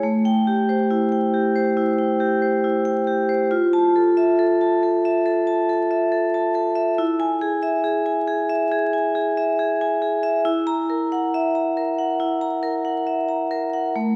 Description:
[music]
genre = classical, contemporary piece for solo vibraphone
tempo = 69 BPM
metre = 4/4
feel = rubato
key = unclear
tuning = A4 = 439 Hz
[part]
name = vibraphone with medium hard mallets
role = solo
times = 0.0-14.2 s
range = A3 to A#5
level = -21 LUFS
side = equal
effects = none
[sound]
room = wet concert hall reverb, RT60 2.0 s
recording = recorded in a church or concert hall, vinyl crackle, nothing above 10.3 kHz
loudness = -21 LUFS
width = mono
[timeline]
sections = 0.0-14.2 A section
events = none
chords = 0.0 Am7; 3.5 Fmaj7; 7.0 E; 10.5 F#7/E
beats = | 0.03 0.91 1.77 2.63 | 3.50 4.38 5.25 6.12 | 6.98 7.84 8.71 9.59 | 10.45 11.34 12.20 13.06 | 13.95

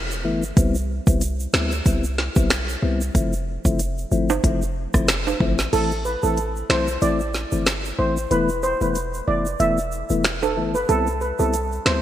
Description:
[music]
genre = dancehall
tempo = 93 BPM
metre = 4/4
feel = swing 56% on 16ths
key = A minor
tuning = A4 = 440 Hz
[part]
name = warm 808-style bass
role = bass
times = 0.0-12.0 s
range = E1 to D2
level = -25 LUFS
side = equal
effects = none
[part]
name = egg shaker and timbales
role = percussion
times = 0.1-11.9 s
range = none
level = -30 LUFS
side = right 6 dB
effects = none
[part]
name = percussive tonewheel organ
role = accompaniment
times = 0.2-12.0 s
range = E3 to E4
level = -25 LUFS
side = left 4 dB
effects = slow rotary speaker
[part]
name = afro-pop drum kit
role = drums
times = 0.6-12.0 s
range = crash cymbal, finger snaps, hi-hat, kick drum, rim click, snare drum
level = -22 LUFS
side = equal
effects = gated reverb
[part]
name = steel pan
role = melody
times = 5.7-12.0 s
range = A4 to E5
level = -23 LUFS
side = right 2 dB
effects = digital delay
[sound]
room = moderate lush hall reverb, RT60 2.4 s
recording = bright 1980s-style digital production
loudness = -19 LUFS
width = side -12 dB against mid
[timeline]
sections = 0.0-5.7 A section; 5.7-12.0 B section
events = kick muted 5.7-12.0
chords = 0.0 Esus4; 0.6 Cmaj7; 3.1 Fmaj7; 5.7 Am; 8.3 Esus4; 10.9 Cmaj7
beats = | 0.57 1.21 1.86 2.50 | 3.15 3.79 4.44 5.08 | 5.73 6.37 7.02 7.66 | 8.31 8.96 9.60 10.24 | 10.89 11.54

